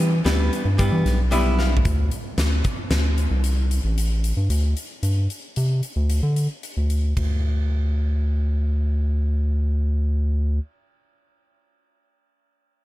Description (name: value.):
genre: progressive instrumental, band music in an uneven meter.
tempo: 113 BPM.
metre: 5/4.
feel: straight.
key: unclear.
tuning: A4 = 440 Hz.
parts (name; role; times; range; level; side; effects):
archtop guitar, miked and amplified; accompaniment; 0.0-1.8 s; G3 to F5; -24 LUFS; equal; none.
round analog bass; bass; 0.0-10.6 s; A1 to E3; -20 LUFS; equal; none.
huge arena drum kit; drums; 0.0-7.3 s; hi-hat, kick drum, ride cymbal, snare drum, toms; -28 LUFS; equal; none.
room: little or no reverb.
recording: none.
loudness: -20 LUFS.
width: side -16 dB against mid.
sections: 0.0-1.8 A section; 1.8-7.2 B section; 7.2-9.8 C section.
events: hollow-body jazz guitar fill 1.1-1.8; drum fill 1.6.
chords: 0.0 Em7; 1.8 D5; 7.2 N.C..